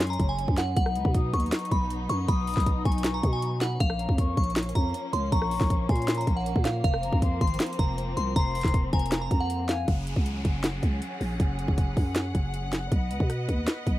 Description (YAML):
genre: hip hop, trap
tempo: 158 BPM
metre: 4/4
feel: half-time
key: unclear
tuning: A4 = 438 Hz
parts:
  - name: glassy synth bell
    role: melody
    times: 0.0-9.9 s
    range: F5 to Db6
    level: -32 LUFS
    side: equal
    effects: chorus, phaser, tape echo
  - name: mellow concert flute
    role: second line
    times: 0.0-9.9 s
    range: Ab5 to D#6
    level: -36 LUFS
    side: left 5 dB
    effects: tape echo
  - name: rich studio string section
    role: sustained chords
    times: 0.0-14.0 s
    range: F3 to Gb5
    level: -35 LUFS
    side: left 1 dB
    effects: none
  - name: growling 808-style bass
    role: bass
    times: 0.0-14.0 s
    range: F1 to B2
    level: -29 LUFS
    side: equal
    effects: none
  - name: trap drum kit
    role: drums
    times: 0.0-14.0 s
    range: handclaps, hi-hat, kick drum, rim click, snare drum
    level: -26 LUFS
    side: equal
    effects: none
  - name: downlifter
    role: sound effects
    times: 0.2-0.8, 9.9-12.9 s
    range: none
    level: -44 LUFS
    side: left 1 dB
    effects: none
room: little or no reverb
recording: none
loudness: -24 LUFS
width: side -15 dB against mid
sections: 0.0-9.9 A section; 9.9-14.0 B section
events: none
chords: 0.0 Gbsus2; 0.8 B; 3.8 Bbm; 6.8 Fsus4; 9.9 Gbsus2; 12.9 B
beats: 0.01 0.39 | 0.77 1.15 1.52 1.90 | 2.28 2.66 3.04 3.42 | 3.80 4.18 4.56 4.94 | 5.32 5.70 6.08 6.46 | 6.84 7.22 7.60 7.98 | 8.36 8.74 9.12 9.50 | 9.88 10.26 10.64 11.02 | 11.40 11.78 12.16 12.54 | 12.92 13.30 13.68